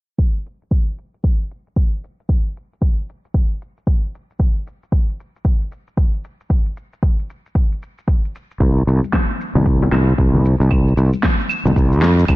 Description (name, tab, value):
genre	organic downtempo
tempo	114 BPM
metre	4/4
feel	swing 60% on 16ths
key	unclear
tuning	A4 = 440 Hz
part	electronic kick drum	drums	0.2-12.4 s	none	-16 LUFS	equal	studio reverb
part	electronic shaker, snare drum and claves	drums	0.2-12.4 s	none	-22 LUFS	equal	studio reverb
part	sustaining fretless electric bass	bass	8.6-12.4 s	C2 to F2	-14 LUFS	equal	sidechain pumping
part	congas and bongos	percussion	9.0-12.2 s	none	-24 LUFS	left 2 dB	none
room	little or no reverb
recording	blown-out, overdriven recording, overdrive, low-pass filter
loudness	-16 LUFS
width	side -19 dB against mid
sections	0.2-12.4 A section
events	filter sweep 0.2-12.4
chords	none